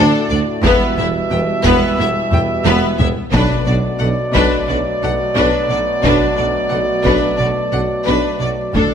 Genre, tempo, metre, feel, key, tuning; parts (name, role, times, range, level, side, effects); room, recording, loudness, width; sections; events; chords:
cinematic, epic orchestral film score; 89 BPM; 4/4; straight; B minor; A4 = 442 Hz
rich symphonic violin section; melody; 0.0-8.9 s; A4 to G5; -21 LUFS; left 6 dB
rich symphonic violin section; second line; 0.0-8.9 s; B3 to A4; -25 LUFS; left 2 dB
rich symphonic viola section; accompaniment; 0.0-8.9 s; B3 to D4; -21 LUFS; equal
mellow French horn section; sustained chords; 0.0-8.9 s; A3 to F#4; -27 LUFS; left 6 dB
warm trombone section; sustained chords; 0.0-8.9 s; A2 to A3; -24 LUFS; right 4 dB
warm trumpet section; stabs; 0.0-8.9 s; D5 to E5; -20 LUFS; equal
clear symphonic cello section; bass; 0.0-8.8 s; D2 to B2; -23 LUFS; right 2 dB
rich symphonic double bass section; bass; 0.0-8.8 s; E1 to D2; -24 LUFS; right 2 dB
warm tuba; bass; 0.0-8.9 s; E1 to D2; -24 LUFS; right 4 dB
taiko ensemble; drums; 0.6-8.9 s; -21 LUFS; left 1 dB
timpani; percussion; 3.3-4.3 s; B2; -23 LUFS; left 2 dB
moderate scoring stage reverb, RT60 1.4 s; -13 LUFS; side -8 dB against mid
0.0-8.9 A section
drum fill 2.3-3.3
0.0 D; 0.6 Em; 3.3 Bm7